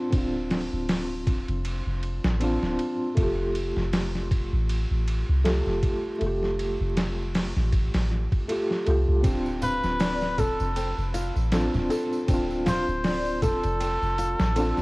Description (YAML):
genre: trip hop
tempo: 79 BPM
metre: 4/4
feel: swing 56% on 16ths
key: D minor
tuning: A4 = 440 Hz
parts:
  - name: felt-muted upright piano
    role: accompaniment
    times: 0.0-14.8 s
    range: A3 to G4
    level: -29 LUFS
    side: equal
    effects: tremolo, low-pass filter, tape echo
  - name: soft 808-style bass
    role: bass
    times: 0.1-14.8 s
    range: D1 to C2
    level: -27 LUFS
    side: equal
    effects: none
  - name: boom bap sampler-style drum kit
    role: drums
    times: 0.1-14.8 s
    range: hi-hat, kick drum, ride cymbal, snare drum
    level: -28 LUFS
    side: equal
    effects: studio ambience
  - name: flamenco guitar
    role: arpeggios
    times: 9.2-14.7 s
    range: C4 to A4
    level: -32 LUFS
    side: left 1 dB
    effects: tape echo
  - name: tambourine and congas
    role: percussion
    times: 9.2-14.8 s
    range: none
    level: -34 LUFS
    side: right 1 dB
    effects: none
  - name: trumpet with cup mute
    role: melody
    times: 9.6-14.8 s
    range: A4 to C5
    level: -29 LUFS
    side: equal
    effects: vintage 12-bit sampler grit, tape echo
room: small room ambience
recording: worn, warbling old tape, cassette tape, vinyl crackle, warbly pitch drift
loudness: -23 LUFS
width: side -23 dB against mid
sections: 0.0-14.8 A section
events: none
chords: 0.0 Dm7; 3.2 Fadd9; 9.2 Dm7